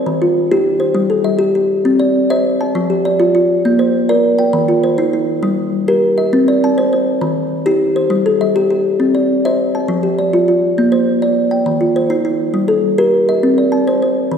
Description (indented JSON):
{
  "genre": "southern african traditional",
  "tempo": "135 BPM (dotted quarters)",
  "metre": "12/8",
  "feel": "straight",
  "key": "C equiheptatonic",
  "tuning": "A4 = 441 Hz",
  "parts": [
    { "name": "kalimba", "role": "solo", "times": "0.0-14.4 s", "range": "Eb3+43c to A5-43c", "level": "-12 LUFS", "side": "equal", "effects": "none" }
  ],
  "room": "wet concert hall reverb, RT60 2.2 s",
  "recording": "recorded in a church or concert hall",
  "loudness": "-12 LUFS",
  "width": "side -7 dB against mid",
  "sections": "0.0-9.0 A section; 9.0-14.4 A section",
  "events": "none",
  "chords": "0.1 Eb; 1.0 Am7b5/G; 1.9 Cm; 2.7 F; 3.6 Bb; 4.5 Eb; 5.4 Gm; 6.3 Cm; 7.2 Eb; 8.1 Am7b5/G; 9.0 Cm; 9.9 F; 10.8 Bb; 11.7 Eb; 12.5 Gm; 13.4 Cm"
}